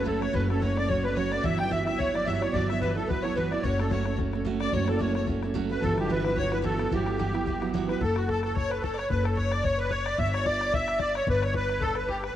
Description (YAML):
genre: celtic folk, Celtic reel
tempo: 219 BPM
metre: 4/4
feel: swing 54% on 8ths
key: E dorian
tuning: A4 = 441 Hz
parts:
  - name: musette accordion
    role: melody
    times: 0.0-12.4 s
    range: F#4 to G5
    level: -29 LUFS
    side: equal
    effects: cassette tape, tape echo
  - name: rich fiddle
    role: second line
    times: 0.0-12.4 s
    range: F#4 to G5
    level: -35 LUFS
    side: left 9 dB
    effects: cassette tape
  - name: picked steel-string acoustic guitar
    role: accompaniment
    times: 0.0-8.0 s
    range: G2 to F#4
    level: -30 LUFS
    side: right 6 dB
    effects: cassette tape
  - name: upright bass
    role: bass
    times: 0.0-12.3 s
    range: F#1 to G1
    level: -30 LUFS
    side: left 1 dB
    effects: none
  - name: bodhran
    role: percussion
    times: 0.0-12.3 s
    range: none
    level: -35 LUFS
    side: left 4 dB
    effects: none
room: moderate lush hall reverb, RT60 2.5 s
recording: home recording on cassette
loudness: -24 LUFS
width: side -11 dB against mid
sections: 0.0-8.0 A section; 8.0-12.4 A section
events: none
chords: 0.0 F#m; 1.4 Emadd9/G; 3.6 F#m; 5.8 Emadd9/G; 8.0 F#madd11; 10.2 Em/G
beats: 0.06 | 0.34 0.61 0.89 1.16 | 1.44 1.71 1.99 2.26 | 2.54 2.81 3.09 3.36 | 3.63 3.91 4.18 4.46 | 4.73 5.01 5.28 5.55 | 5.83 6.10 6.38 6.65 | 6.92 7.20 7.47 7.74 | 8.01 8.29 8.56 8.83 | 9.10 9.37 9.65 9.92 | 10.19 10.46 10.73 11.00 | 11.28 11.55 11.82 12.09